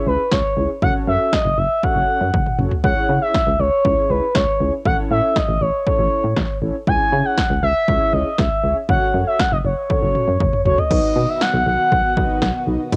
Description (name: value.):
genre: synth-pop.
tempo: 119 BPM.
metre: 4/4.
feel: straight.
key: unclear.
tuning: A4 = 440 Hz.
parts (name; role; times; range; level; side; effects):
expressive portamento lead; melody; 0.0-12.6 s; B4 to G#5; -21 LUFS; equal; chorus, cassette tape.
mellow synth brass; accompaniment; 0.0-13.0 s; C#4 to E5; -28 LUFS; equal; chorus, cassette tape, plate reverb.
solid FM bass; bass; 0.1-13.0 s; F#1 to C#3; -23 LUFS; equal; none.
punchy analog drum machine; drums; 0.3-13.0 s; crash cymbal, hi-hat, kick drum, snare drum, toms; -24 LUFS; equal; cassette tape.
string machine, full ensemble; sustained chords; 10.9-13.0 s; B#2 to F#4; -30 LUFS; equal; ensemble chorus, cassette tape.
room: moderate booth ambience, RT60 0.2 s.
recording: home recording on cassette.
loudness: -18 LUFS.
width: mono.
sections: 0.0-10.9 A section; 10.9-13.0 B section.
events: drum fill 2.3-2.8, 9.9-10.9.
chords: 0.0 C#m; 0.8 F#m; 2.8 C#m; 4.9 A; 6.9 C#m; 8.9 F#m; 10.9 B.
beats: 0.32 | 0.82 1.33 1.83 2.34 | 2.84 3.34 3.85 4.35 | 4.86 5.36 5.87 6.37 | 6.87 7.38 7.88 8.39 | 8.89 9.39 9.90 10.40 | 10.91 11.41 11.91 12.42 | 12.92.